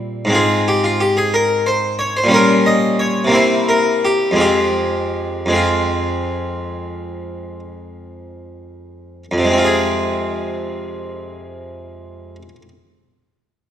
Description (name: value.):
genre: classical, baroque-style suite movement for harpsichord.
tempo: 43-61 BPM (dotted quarters).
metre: 12/8.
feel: rubato.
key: F minor.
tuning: A4 = 439 Hz.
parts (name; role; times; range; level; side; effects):
harpsichord; solo; 0.0-12.7 s; F2 to Eb5; -16 LUFS; equal; none.
room: moderate scoring stage reverb, RT60 1.4 s.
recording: minimal, uncompressed stereo recording.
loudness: -14 LUFS.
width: side -10 dB against mid.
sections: 0.0-9.3 A section; 9.3-13.7 B section.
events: slowing down 1.7-9.3.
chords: 0.3 Fm/Ab; 2.3 Gm7b5/Bb; 3.3 C7; 4.4 Fm.